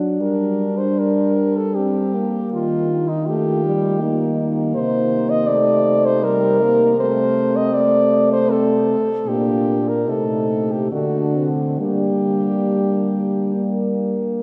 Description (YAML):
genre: classical, lyrical piece for horn quartet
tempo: 57-82 BPM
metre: 3/4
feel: rubato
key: G minor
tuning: A4 = 441 Hz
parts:
  - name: mellow French horn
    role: second line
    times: 0.0-14.4 s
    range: Bb3 to F4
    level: -27 LUFS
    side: equal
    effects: none
  - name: mellow French horn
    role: accompaniment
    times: 0.0-14.2 s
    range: G3 to D4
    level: -25 LUFS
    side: equal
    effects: none
  - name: dark French horn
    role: bass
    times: 0.0-14.2 s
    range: Bb2 to G3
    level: -25 LUFS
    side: equal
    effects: none
  - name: clear French horn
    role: melody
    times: 0.2-14.0 s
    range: Eb4 to Eb5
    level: -23 LUFS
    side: equal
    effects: none
room: wet cathedral reverb, RT60 5.4 s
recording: recorded in a church or concert hall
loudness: -19 LUFS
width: mono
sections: 0.0-14.4 A section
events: none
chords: 0.2 Gm; 2.5 Eb; 4.8 Cm7; 7.0 Csus2; 9.3 Gm/Bb; 10.1 Adim/C; 10.9 D7; 11.8 Gm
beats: | 0.20 0.96 1.74 | 2.53 3.27 4.02 | 4.76 5.49 6.23 | 6.98 7.74 8.50 | 9.27 10.08 10.92 | 11.80 12.70 13.58